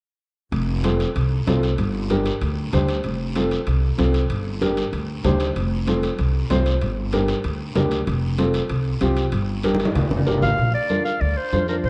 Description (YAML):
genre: latin, cumbia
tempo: 191 BPM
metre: 4/4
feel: straight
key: F major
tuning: A4 = 440 Hz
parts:
  - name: upright bass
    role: bass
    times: 0.5-11.9 s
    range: F1 to F2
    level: -25 LUFS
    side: equal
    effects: none
  - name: congas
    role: percussion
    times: 0.5-11.9 s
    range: none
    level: -29 LUFS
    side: equal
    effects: none
  - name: guiro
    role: percussion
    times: 0.5-11.9 s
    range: none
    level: -40 LUFS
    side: equal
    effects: none
  - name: timbales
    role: percussion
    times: 0.5-10.5 s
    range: none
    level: -36 LUFS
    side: equal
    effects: none
  - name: warm upright piano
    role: accompaniment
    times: 0.8-11.9 s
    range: C4 to C5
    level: -27 LUFS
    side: equal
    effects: none
  - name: clear clarinet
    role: melody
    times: 10.4-11.9 s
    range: Bb4 to F5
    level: -25 LUFS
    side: equal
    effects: delay
room: moderate plate reverb, RT60 2.4 s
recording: dreamy mix soaked in reverb, cassette tape, lossy compression artefacts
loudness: -22 LUFS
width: mono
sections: 0.5-10.6 A section; 10.6-11.9 B section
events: drum fill 9.6-10.6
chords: 0.5 F; 1.8 Gm; 3.0 F; 4.3 Gm; 5.6 F; 6.8 Gm; 8.1 F; 9.3 Gm; 10.6 Bb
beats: | 0.53 0.84 1.16 1.47 | 1.79 2.10 2.42 2.73 | 3.04 3.36 3.67 3.99 | 4.30 4.62 4.93 5.24 | 5.56 5.87 6.19 6.50 | 6.82 7.13 7.44 7.76 | 8.07 8.39 8.70 9.02 | 9.33 9.64 9.96 10.27 | 10.59 10.90 11.21 11.53 | 11.84